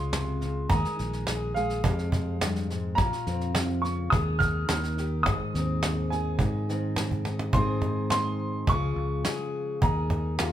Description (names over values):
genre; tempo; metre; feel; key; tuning
acoustic folk duo or small band; 105 BPM; 4/4; straight; Ab major; A4 = 442 Hz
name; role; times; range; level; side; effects
warm upright piano; melody; 0.0-10.5 s; F5 to F6; -31 LUFS; right 2 dB; none
fingerpicked steel-string acoustic guitar; accompaniment; 0.0-10.5 s; F2 to Bb4; -32 LUFS; left 1 dB; none
fingered electric bass; bass; 0.0-10.5 s; Ab1 to Ab2; -30 LUFS; equal; none
soft brush drum kit; drums; 0.1-10.5 s; kick drum, snare drum; -33 LUFS; equal; none
cajon; percussion; 0.1-10.5 s; none; -28 LUFS; right 2 dB; none
room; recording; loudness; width
light reverb; none; -25 LUFS; side -11 dB against mid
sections
0.0-7.5 A section; 7.5-10.5 B section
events
drum fill 7.1-7.5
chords
0.0 Db; 0.7 Ebsus4; 1.8 Fmadd9; 3.0 Bbmadd9; 4.1 Ebsus4; 4.7 Ebadd9; 5.3 Ab; 8.7 Db; 9.8 Ebsus4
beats
0.13 | 0.70 1.27 1.84 2.41 | 2.98 3.55 4.12 4.69 | 5.26 5.83 6.40 6.97 | 7.54 8.11 8.68 9.25 | 9.82 10.39